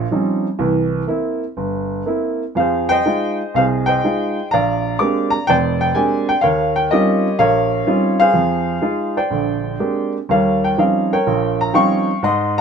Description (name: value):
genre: solo jazz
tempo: 124 BPM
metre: 4/4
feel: swing 69% on 8ths, rubato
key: Eb mixolydian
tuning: A4 = 435 Hz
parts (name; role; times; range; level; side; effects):
- clear baby grand piano; solo; 0.0-12.6 s; F1 to D6; -15 LUFS; right 1 dB; none
room: light reverb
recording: minimal, uncompressed stereo recording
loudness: -15 LUFS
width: side -6 dB against mid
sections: 0.0-10.3 A section; 10.3-12.6 A section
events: none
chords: 0.0 Eb13; 0.6 C7; 2.6 Fm7; 4.5 Bb13; 6.4 Eb13; 8.4 Fm7; 9.3 Bb13; 10.3 Eb13